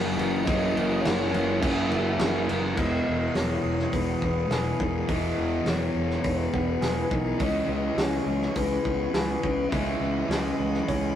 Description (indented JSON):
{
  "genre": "rock, shoegaze and dream pop",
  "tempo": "104 BPM",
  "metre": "4/4",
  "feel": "straight",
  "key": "E lydian",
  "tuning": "A4 = 443 Hz",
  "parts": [
    { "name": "breathy flute-like synth lead", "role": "melody", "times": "0.0-11.2 s", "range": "A#4 to E5", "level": "-32 LUFS", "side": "left 3 dB", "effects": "chorus" },
    { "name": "icy glass pad", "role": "sustained chords", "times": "0.0-11.2 s", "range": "E4 to D#6", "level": "-35 LUFS", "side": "left 2 dB", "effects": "chorus, built-in reverb" },
    { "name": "direct-recorded clean electric guitar", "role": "arpeggios", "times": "0.0-11.2 s", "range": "E3 to G#4", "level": "-35 LUFS", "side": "right 4 dB", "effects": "none" },
    { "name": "distorted electric guitar", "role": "riff", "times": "0.0-2.8 s", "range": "F#2 to A#3", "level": "-33 LUFS", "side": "left 1 dB", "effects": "none" },
    { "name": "overdriven semi-hollow guitar", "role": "riff", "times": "0.0-11.2 s", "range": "F#2 to E4", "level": "-32 LUFS", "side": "right 5 dB", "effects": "none" },
    { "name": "thick fuzz guitar", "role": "riff", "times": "0.0-11.2 s", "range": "E2 to C#4", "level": "-31 LUFS", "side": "left 4 dB", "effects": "distortion" },
    { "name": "fuzz fingered electric bass", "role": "bass", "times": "0.0-11.1 s", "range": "E1 to C#2", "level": "-30 LUFS", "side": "equal", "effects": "overdrive" },
    { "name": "loose indie drum kit", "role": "drums", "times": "0.2-11.0 s", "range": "crash cymbal, hi-hat, kick drum, snare drum", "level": "-30 LUFS", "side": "equal", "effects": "none" }
  ],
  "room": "wet studio reverb, RT60 0.6 s",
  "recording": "rough rehearsal-room recording",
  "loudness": "-23 LUFS",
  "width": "side -10 dB against mid",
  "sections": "0.0-2.8 A section; 2.8-11.2 B section",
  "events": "none",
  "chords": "0.0 F#7; 2.8 Emaj7; 7.4 C#m7"
}